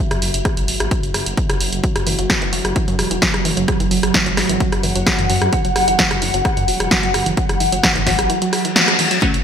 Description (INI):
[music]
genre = driving peak-time techno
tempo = 130 BPM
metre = 4/4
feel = straight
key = unclear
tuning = A4 = 440 Hz
[part]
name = deep dark ambient pad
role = drone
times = 0.0-9.4 s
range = F#3 to F#4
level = -25 LUFS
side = right 3 dB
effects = chorus, built-in reverb, sidechain pumping
[part]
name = granular cloud pad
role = texture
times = 0.2-9.4 s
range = F#4 to F#5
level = -23 LUFS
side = left 2 dB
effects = built-in reverb, wide subtle chorus, sidechain pumping
[part]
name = detuned saw bass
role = bass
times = 0.1-9.4 s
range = E1 to F#2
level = -24 LUFS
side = equal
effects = sidechain pumping
[part]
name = punchy analog drum machine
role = drums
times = 0.1-9.4 s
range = hi-hat, rim click, snare drum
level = -18 LUFS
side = equal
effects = none
[part]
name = electronic kick drum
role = drums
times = 0.5-9.3 s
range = none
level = -21 LUFS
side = equal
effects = overdrive
[part]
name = wide unison pluck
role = riff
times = 1.8-9.3 s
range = E3 to F#3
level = -26 LUFS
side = right 2 dB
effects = tube saturation, sidechain pumping, digital delay
[part]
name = reverse cymbal and impact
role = sound effects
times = 8.5-9.4 s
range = none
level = -23 LUFS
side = left 5 dB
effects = none
[part]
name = wavetable chord stab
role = stabs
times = 9.2-9.4 s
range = F#3 to C#4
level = -19 LUFS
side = left 2 dB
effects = sidechain pumping
[sound]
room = moderate lush hall reverb, RT60 1.8 s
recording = bright 1980s-style digital production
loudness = -14 LUFS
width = side -8 dB against mid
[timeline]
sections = 0.0-9.2 A section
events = fade-in on ambient pad 0.0-9.2; reverse cymbal 8.5-9.2; band accent 8.8; impact 9.2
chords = 0.0 Esus2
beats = 0.45 0.91 1.37 | 1.84 2.30 2.76 3.22 | 3.68 4.14 4.61 5.07 | 5.53 5.99 6.45 6.91 | 7.37 7.84 8.30 8.76 | 9.22